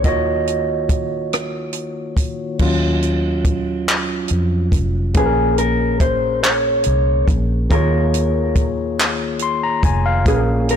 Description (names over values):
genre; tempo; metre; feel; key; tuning
slow six-eight R&B; 47 BPM (dotted quarters); 6/8; straight; unclear; A4 = 440 Hz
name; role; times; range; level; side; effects
mellow electric guitar; melody; 0.0-10.8 s; Ab4 to Eb5; -20 LUFS; right 1 dB; none
barky tine electric piano; accompaniment; 0.0-10.8 s; Bb2 to C6; -21 LUFS; moving between left 6 dB and right 4 dB; auto-pan
vintage muted fingered electric bass; bass; 0.0-10.8 s; F1 to F2; -20 LUFS; equal; none
compact cocktail drum kit; drums; 0.0-10.8 s; crash cymbal, handclaps, hi-hat, kick drum, rim click; -20 LUFS; equal; none
room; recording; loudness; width
little or no reverb; blown-out, overdriven recording, overdrive; -16 LUFS; side -8 dB against mid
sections
0.0-2.6 A section; 2.6-5.2 B section; 5.2-10.8 C section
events
tine electric piano solo 2.6-5.2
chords
0.0 Ebm9; 5.2 Bbm9; 7.7 Eb9sus4; 10.3 Bbm7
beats
| 0.04 1.32 | 2.60 3.88 | 5.15 6.43 | 7.71 8.98 | 10.26